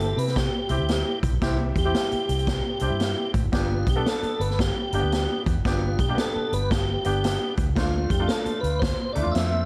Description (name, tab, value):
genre	uptempo 1960s-style soul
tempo	113 BPM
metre	4/4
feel	swing 64% on 8ths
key	G mixolydian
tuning	A4 = 440 Hz
part	tonewheel organ	melody	0.0-9.7 s	E4 to E5	-30 LUFS	equal	overdrive, chorus vibrato, tape echo
part	bright upright piano	accompaniment	0.0-9.7 s	A3 to A4	-33 LUFS	equal	plate reverb
part	vintage muted fingered electric bass	bass	0.0-9.7 s	F#1 to C3	-29 LUFS	equal	none
part	swinging big-band drum kit	drums	0.0-9.5 s	hi-hat, kick drum, snare drum	-29 LUFS	equal	none
room	light reverb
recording	vinyl crackle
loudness	-24 LUFS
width	mono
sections	0.0-9.7 A section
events	none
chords	0.0 C; 3.5 G; 7.8 Dm